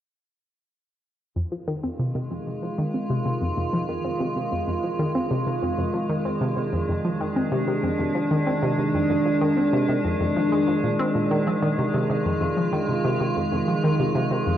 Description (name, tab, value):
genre	ambient, sequencer-driven space music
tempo	95 BPM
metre	4/4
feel	straight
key	F dorian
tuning	A4 = 438 Hz
part	evolving wavetable pad	sustained chords	1.8-14.6 s	Eb3 to F4	-24 LUFS	equal	chorus, built-in reverb
part	analog pluck	riff	1.4-14.6 s	F2 to C4	-25 LUFS	equal	chorus, tape echo
room	wet lush hall reverb, RT60 2.6 s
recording	worn, warbling old tape, cassette tape, warbly pitch drift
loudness	-22 LUFS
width	side -11 dB against mid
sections	1.4-14.6 A section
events	filter sweep on synth arpeggio sound 1.4-14.6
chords	1.4 Fm7